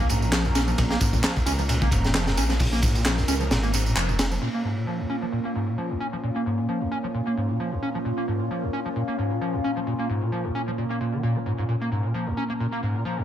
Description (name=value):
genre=breakbeat, breaks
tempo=132 BPM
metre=4/4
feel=swing 55% on 16ths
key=Bb minor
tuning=A4 = 440 Hz
part: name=phased analog pad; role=sustained chords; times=0.0-13.2 s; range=Bb2 to Bb4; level=-29 LUFS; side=equal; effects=phaser, chorus, sidechain pumping
part: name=overdriven acid bass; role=riff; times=0.0-13.2 s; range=Bb1 to Db4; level=-27 LUFS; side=equal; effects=distortion, wide subtle chorus, cassette tape, tape echo
part: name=dark detuned saw bass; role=bass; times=0.0-4.4 s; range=F1 to Db2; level=-25 LUFS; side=equal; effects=none
part: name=crunchy breakbeat drum kit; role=drums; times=0.1-4.3 s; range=hi-hat, kick drum, ride cymbal, snare drum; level=-26 LUFS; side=equal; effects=tape echo
part: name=electronic tambourine and handclaps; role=drums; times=0.1-4.4 s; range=none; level=-31 LUFS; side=right 2 dB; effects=tape echo
room=light reverb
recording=echo-heavy mix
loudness=-22 LUFS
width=side -11 dB against mid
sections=0.0-4.4 A section; 4.4-13.2 B section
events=kick drops out 3.5-4.4; band accent 4.0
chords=0.0 Bbm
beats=0.33 | 0.78 1.24 1.69 2.15 | 2.60 3.05 3.51 3.96 | 4.42 4.87 5.33 5.78 | 6.24 6.69 7.14 7.60 | 8.05 8.51 8.96 9.42 | 9.87 10.33 10.78 11.24 | 11.69 12.14 12.60 13.05